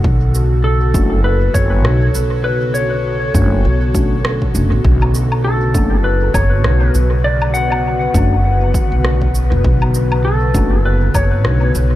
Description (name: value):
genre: ambient dub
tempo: 100 BPM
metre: 4/4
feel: swing 57% on 16ths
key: B minor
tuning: A4 = 440 Hz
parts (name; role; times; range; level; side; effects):
- airy breathy pad; sustained chords; 0.0-12.0 s; C#3 to B4; -22 LUFS; left 1 dB; chorus
- upright bass; bass; 0.0-12.0 s; F#1 to B1; -14 LUFS; equal; tube saturation
- electronic kick drum; drums; 0.0-11.3 s; none; -18 LUFS; equal; overdrive, studio reverb
- electronic shaker, rim click and woodblock; drums; 0.3-11.9 s; none; -25 LUFS; equal; studio reverb, dub echo
- clean lap steel guitar; melody; 0.6-11.7 s; A4 to F#5; -21 LUFS; left 1 dB; dub echo
- mellow tine electric piano; stabs; 0.9-10.8 s; A3 to F#4; -26 LUFS; left 3 dB; dub echo
room: little or no reverb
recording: none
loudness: -12 LUFS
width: side -14 dB against mid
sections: 0.0-12.0 A section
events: none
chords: 0.0 Bm9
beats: | 0.05 0.65 1.25 1.85 | 2.45 3.05 3.65 4.25 | 4.85 5.45 6.05 6.65 | 7.25 7.85 8.45 9.05 | 9.65 10.25 10.85 11.45